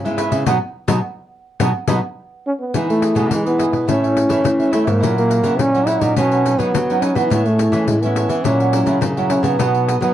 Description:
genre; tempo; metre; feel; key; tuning
samba and choro; 105 BPM; 4/4; straight; unclear; A4 = 440 Hz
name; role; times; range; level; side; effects
cavaquinho; accompaniment; 0.0-10.1 s; D#4 to G#5; -24 LUFS; right 6 dB; none
nylon-string guitar; accompaniment; 0.0-10.1 s; G#2 to E4; -24 LUFS; left 2 dB; none
nylon-string guitar; bass; 0.0-10.1 s; G#2 to F#3; -20 LUFS; equal; none
pandeiro; percussion; 0.1-10.1 s; none; -23 LUFS; left 5 dB; none
mellow trombone; melody; 2.5-10.1 s; G#3 to E4; -18 LUFS; right 1 dB; none
room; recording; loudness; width
light reverb; worn, warbling old tape, cassette tape, warbly pitch drift; -15 LUFS; side -11 dB against mid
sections
0.0-2.7 A section; 2.7-10.1 B section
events
band accent 0.5-2.7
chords
0.5 B; 2.7 Emaj7; 3.9 A; 5.0 F#7/A#; 6.2 Badd9; 7.3 Amaj7; 8.5 F#7/A#; 9.6 B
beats
| 0.47 1.04 1.61 2.18 | 2.75 3.31 3.88 4.46 | 5.03 5.60 6.17 6.74 | 7.31 7.88 8.45 9.02 | 9.60

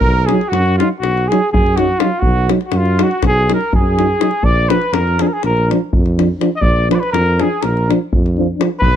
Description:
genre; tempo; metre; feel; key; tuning
balkan folk, Balkan brass band; 245 BPM (eighths); 9/8; straight; Bb phrygian dominant; A4 = 440 Hz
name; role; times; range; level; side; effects
cornet with straight mute; melody; 0.0-9.0 s; F4 to Eb5; -18 LUFS; left 2 dB; none
warm trumpet; second line; 0.0-9.0 s; F4 to Eb5; -22 LUFS; right 13 dB; none
mellow tuba; bass; 0.0-9.0 s; Bb1 to F#2; -17 LUFS; right 1 dB; none
davul; percussion; 0.0-8.9 s; none; -18 LUFS; left 2 dB; none
dark euphonium; accompaniment; 0.3-8.7 s; D4 to D#4; -20 LUFS; left 10 dB; none
dark euphonium; accompaniment; 0.3-8.7 s; F3 to F#3; -19 LUFS; right 7 dB; none
room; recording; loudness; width
studio reverb; dry, close 1970s-style studio recording; -12 LUFS; side -9 dB against mid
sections
0.0-9.0 A section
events
none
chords
0.0 B; 4.4 Bb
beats
| 0.02 0.26 0.51 0.76 1.00 1.25 1.49 1.74 1.98 | 2.23 2.47 2.72 2.96 3.21 3.45 3.70 3.94 4.19 | 4.43 4.67 4.92 5.16 5.41 5.65 5.90 6.14 6.38 | 6.63 6.87 7.12 7.36 7.61 7.85 8.09 8.34 8.58 | 8.82

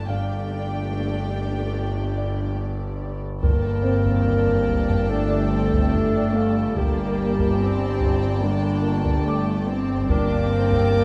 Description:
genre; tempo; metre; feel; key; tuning
cinematic, suspense film score; 72 BPM; 4/4; straight; G minor; A4 = 440 Hz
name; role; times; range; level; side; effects
warm symphonic violin section; melody; 0.0-11.0 s; G5 to A5; -42 LUFS; equal; none
rich symphonic violin section; second line; 0.0-11.0 s; G4 to G5; -37 LUFS; equal; none
dark symphonic viola section; accompaniment; 0.0-11.0 s; A3 to D4; -31 LUFS; equal; none
warm symphonic cello section; bass; 0.0-11.0 s; G2; -29 LUFS; equal; none
overtone-sweeping drone; drone; 0.0-11.0 s; G1; -32 LUFS; equal; chorus, built-in reverb
clear baby grand piano; texture; 0.0-11.0 s; C4 to D6; -36 LUFS; equal; none
dark symphonic double bass section; bass; 0.1-11.0 s; G1; -31 LUFS; equal; none
mellow clarinet; second line; 3.4-11.0 s; D4 to Bb4; -28 LUFS; equal; none
warm French horn section; sustained chords; 3.4-11.0 s; D3 to Bb3; -28 LUFS; equal; none
taiko ensemble; drums; 3.4-11.0 s; none; -27 LUFS; equal; none
warm studio violin section; texture; 10.1-11.0 s; D6 to G6; -39 LUFS; equal; none
room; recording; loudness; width
moderate scoring stage reverb, RT60 1.8 s; dark, warm production; -22 LUFS; mono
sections
0.0-3.4 A section; 3.4-11.0 A section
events
none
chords
0.0 Gsus2; 3.4 Gmadd9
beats
| 0.10 0.93 1.76 2.60 | 3.43 4.26 5.10 5.93 | 6.76 7.60 8.43 9.26 | 10.10 10.93

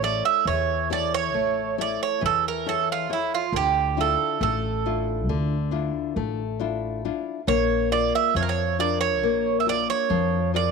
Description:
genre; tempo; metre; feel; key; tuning
greek folk, Greek bouzouki band; 137 BPM (eighths); 9/8; straight; unclear; A4 = 440 Hz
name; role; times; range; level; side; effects
Greek bouzouki; melody; 0.0-10.7 s; E4 to E5; -23 LUFS; right 12 dB; none
nylon-string guitar; accompaniment; 0.0-10.7 s; D3 to D5; -27 LUFS; left 11 dB; none
upright bass; bass; 0.0-10.7 s; A1 to F2; -29 LUFS; equal; none
room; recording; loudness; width
moderate plate reverb, RT60 2.4 s; 1960s-style stereo with parts hard left and right; -22 LUFS; side -5 dB against mid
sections
0.0-10.7 A section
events
none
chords
0.0 A; 3.5 Dmadd9; 7.5 Bb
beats
0.03 0.47 0.91 1.34 1.78 2.22 2.65 3.09 | 3.53 3.97 4.40 4.84 5.28 5.72 6.15 6.59 7.03 | 7.47 7.91 8.34 8.78 9.22 9.66 10.10 10.53

